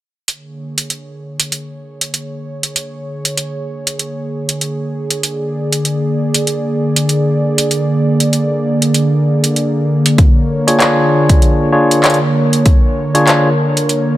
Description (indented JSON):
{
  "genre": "glitch hop",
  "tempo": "97 BPM",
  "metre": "4/4",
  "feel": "swing 59% on 16ths",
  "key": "unclear",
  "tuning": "A4 = 440 Hz",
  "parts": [
    { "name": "warm analog pad", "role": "sustained chords", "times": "0.3-14.2 s", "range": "D3 to D5", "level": "-15 LUFS", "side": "equal", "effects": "chorus, sidechain pumping" },
    { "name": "pop drum kit", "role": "drums", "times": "0.3-14.0 s", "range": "handclaps, hi-hat", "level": "-16 LUFS", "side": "right 1 dB", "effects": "none" },
    { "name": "electronic kick drum", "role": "drums", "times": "10.2-12.8 s", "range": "none", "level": "-10 LUFS", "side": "equal", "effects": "none" },
    { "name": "barky tine electric piano", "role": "stabs", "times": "10.7-13.5 s", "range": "D4 to C#5", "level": "-14 LUFS", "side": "left 1 dB", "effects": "vintage 12-bit sampler grit, sidechain pumping, dub echo" }
  ],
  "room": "light reverb, digital ambience",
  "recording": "none",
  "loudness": "-12 LUFS",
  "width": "side -14 dB against mid",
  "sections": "0.3-14.2 A section",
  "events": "none",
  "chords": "0.3 Bb7#9"
}